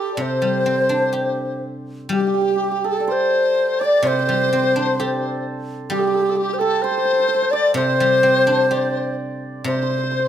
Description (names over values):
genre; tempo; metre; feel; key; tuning
chinese traditional, Chinese chamber ensemble; 63 BPM; 2/4; rubato; unclear; A4 = 440 Hz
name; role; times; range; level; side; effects
bright reedy low xiao; melody; 0.0-10.3 s; G4 to D5; -19 LUFS; equal; none
hammered dulcimer; second line; 0.0-10.3 s; G4 to D5; -26 LUFS; right 7 dB; none
mellow large dizi; second line; 0.0-10.3 s; G4 to D5; -24 LUFS; left 6 dB; none
guzheng; accompaniment; 0.2-10.3 s; C3 to G4; -24 LUFS; left 1 dB; none
room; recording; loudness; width
light reverb; close, detailed microphones; -17 LUFS; side -10 dB against mid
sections
0.0-2.1 A section; 2.1-10.3 B section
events
none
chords
none